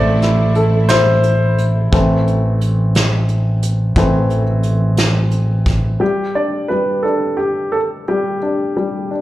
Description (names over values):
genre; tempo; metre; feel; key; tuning
six-eight pop ballad; 58 BPM (dotted quarters); 6/8; straight; unclear; A4 = 441 Hz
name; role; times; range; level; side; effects
clear baby grand piano; melody; 0.0-1.6, 6.0-9.2 s; G4 to D5; -18 LUFS; equal; none
clear upright piano; accompaniment; 0.0-9.2 s; E3 to A4; -19 LUFS; left 1 dB; slapback echo
warm studio string section; sustained chords; 0.0-1.9 s; A3 to E4; -26 LUFS; right 3 dB; none
fretless electric bass; bass; 0.0-6.0 s; A1; -15 LUFS; equal; none
soft brush drum kit; drums; 0.2-5.8 s; hi-hat, kick drum, snare drum; -19 LUFS; equal; none
room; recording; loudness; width
light reverb, small room ambience; live gig heard through the venue's PA, club reverb; -13 LUFS; side -15 dB against mid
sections
0.0-1.9 A section; 1.9-6.0 B section; 6.0-9.2 C section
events
upright piano solo 1.9-6.0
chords
0.0 Am; 6.0 G5